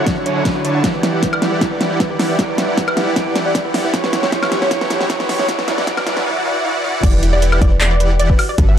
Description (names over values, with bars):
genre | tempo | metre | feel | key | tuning
future bass | 155 BPM | 4/4 | half-time | unclear | A4 = 440 Hz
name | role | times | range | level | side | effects
electric guitar at the edge of break-up | accompaniment | 0.0-6.3 s | D3 to D5 | -25 LUFS | right 3 dB | sidechain pumping, ping-pong delay
airy breathy pad | sustained chords | 0.0-6.3 s | F#3 to F#5 | -28 LUFS | left 1 dB | none
supersaw chords | riff | 0.0-8.8 s | D3 to A5 | -20 LUFS | equal | cassette tape, sidechain pumping, low-pass filter, ping-pong delay
riser and swell | sound effects | 1.4-7.0 s | none | -29 LUFS | equal | none
thumb-piano-like synth pluck | arpeggios | 0.1-8.8 s | E4 to G5 | -24 LUFS | right 3 dB | chorus, sidechain pumping, ping-pong delay
electronic kick drum | drums | 0.1-8.7 s | none | -18 LUFS | equal | overdrive
pop drum kit | drums | 0.1-8.7 s | crash cymbal, handclaps, hi-hat, snare drum, woodblock | -20 LUFS | equal | overdrive
wide unison pluck | melody | 7.0-8.8 s | D5 to E5 | -23 LUFS | equal | sidechain pumping, ping-pong delay
warm 808-style bass | bass | 7.0-8.8 s | E1 to G1 | -15 LUFS | equal | tube saturation, sidechain pumping
room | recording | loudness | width
moderate digital room reverb, RT60 1.2 s | dark, warm production, high-pass filter | -14 LUFS | side -9 dB against mid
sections
0.0-7.0 A section; 7.0-8.8 B section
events
build-up 0.0-7.0; drum fill 0.0-6.3; filter sweep on supersaw synth 0.0-7.0; filter sweep on synth arpeggio sound 0.0-7.0; filter sweep 0.0-7.0; swell 6.3-7.0; drop 7.0-8.8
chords
0.0 Dmaj7; 0.8 Em7; 3.9 A7; 5.5 Dmaj7; 7.0 Em7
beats
0.07 0.45 | 0.84 1.23 1.61 2.00 | 2.39 2.78 3.16 3.55 | 3.94 4.32 4.71 5.10 | 5.49 5.87 6.26 6.65 | 7.03 7.42 7.81 8.20 | 8.58